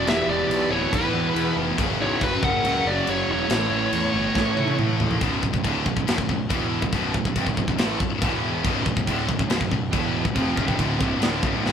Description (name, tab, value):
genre	heavy metal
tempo	140 BPM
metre	4/4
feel	straight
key	B minor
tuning	A4 = 440 Hz
part	high-gain lead guitar	melody	0.0-4.8 s	B4 to F#5	-25 LUFS	equal	distortion
part	high-gain lead guitar	second line	0.0-4.8 s	E4 to A#4	-30 LUFS	right 1 dB	distortion
part	distorted electric guitar	riff	0.0-11.7 s	B1 to A3	-27 LUFS	right 6 dB	distortion
part	heavy high-gain guitar	riff	0.0-11.7 s	B1 to A3	-28 LUFS	left 9 dB	distortion
part	sludgy distorted guitar	riff	0.0-5.2, 8.6-11.7 s	B1 to A3	-32 LUFS	left 1 dB	none
part	fuzz picked electric bass	bass	0.0-11.7 s	B0 to A2	-30 LUFS	equal	overdrive
part	tight metal drum kit	drums	0.1-11.7 s	crash cymbal, kick drum, snare drum, toms	-26 LUFS	left 1 dB	none
room	light reverb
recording	band playing live in one room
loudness	-20 LUFS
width	side -8 dB against mid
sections	0.0-5.2 A section; 5.2-11.7 B section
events	half time 0.0-5.2; drum fill 4.4-5.2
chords	0.1 Em; 1.8 F#; 3.5 A; 5.2 Bm; 8.2 E5; 8.6 Bm